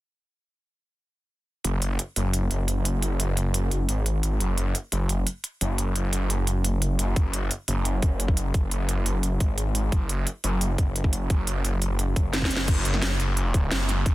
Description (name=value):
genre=dark technical drum and bass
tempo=174 BPM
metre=4/4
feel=straight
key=unclear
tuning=A4 = 440 Hz
part: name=snarling distorted saw bass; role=bass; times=1.6-14.1 s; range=F#1 to G#1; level=-24 LUFS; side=equal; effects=distortion, overdrive, sidechain pumping
part: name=drum and bass drum kit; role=drums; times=1.6-14.1 s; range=crash cymbal, hi-hat, snare drum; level=-28 LUFS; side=right 1 dB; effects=none
part: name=electronic kick drum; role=drums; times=7.2-14.1 s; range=none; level=-22 LUFS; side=equal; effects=none
room=little or no reverb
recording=dense, heavily limited modern master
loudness=-23 LUFS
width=side -17 dB against mid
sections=1.6-12.7 A section; 12.7-14.1 B section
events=drum fill 12.3-12.7; drop 12.7-14.1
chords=none